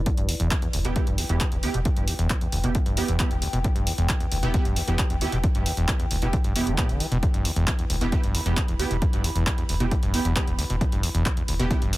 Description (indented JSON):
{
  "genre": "driving peak-time techno",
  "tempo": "134 BPM",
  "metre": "4/4",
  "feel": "straight",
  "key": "E minor",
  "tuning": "A4 = 440 Hz",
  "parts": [
    { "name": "saturated sub bass", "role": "bass", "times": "0.0-11.9 s", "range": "E1", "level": "-29 LUFS", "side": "equal", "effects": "tube saturation, sidechain pumping, low-pass filter" },
    { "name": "warbly tape-like pad", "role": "texture", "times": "0.0-12.0 s", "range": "E4 to B5", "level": "-37 LUFS", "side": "left 1 dB", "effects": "chorus, built-in reverb, sidechain pumping" },
    { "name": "overdriven acid bass", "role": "riff", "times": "0.1-12.0 s", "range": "E1 to E3", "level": "-27 LUFS", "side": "equal", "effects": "sidechain pumping" },
    { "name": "electronic kick drum", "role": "drums", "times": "0.1-11.8 s", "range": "none", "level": "-25 LUFS", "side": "equal", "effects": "none" },
    { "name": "punchy analog drum machine", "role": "drums", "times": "0.1-12.0 s", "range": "handclaps, hi-hat", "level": "-30 LUFS", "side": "equal", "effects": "sidechain pumping on hats" },
    { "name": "rave stab", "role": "stabs", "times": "0.8-11.8 s", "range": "B3 to G4", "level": "-32 LUFS", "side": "right 3 dB", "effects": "chorus, built-in reverb, sidechain pumping, dub echo" }
  ],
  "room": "little or no reverb",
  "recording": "none",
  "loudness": "-22 LUFS",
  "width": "side -18 dB against mid",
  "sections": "0.0-12.0 A section",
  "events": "none",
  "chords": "0.0 Em"
}